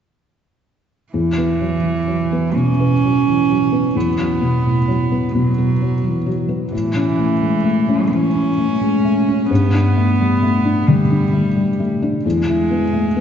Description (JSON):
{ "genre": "neoclassical piano and strings", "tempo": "87 BPM", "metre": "4/4", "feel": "rubato", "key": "unclear", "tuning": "A4 = 444 Hz", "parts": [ { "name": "warm cello", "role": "second line", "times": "1.1-13.2 s", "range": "E3 to C#4", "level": "-19 LUFS", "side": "right 3 dB", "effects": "none" }, { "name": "felt-muted upright piano", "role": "accompaniment", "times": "1.1-13.2 s", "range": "E2 to E4", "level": "-16 LUFS", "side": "left 1 dB", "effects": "none" } ], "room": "wet church reverb, RT60 3.3 s", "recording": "recorded in a church or concert hall, nothing above 7.8 kHz", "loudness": "-15 LUFS", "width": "side -8 dB against mid", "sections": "1.1-13.2 A section", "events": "none", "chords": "1.1 Esus2; 6.7 A; 9.5 Gadd9; 12.2 E" }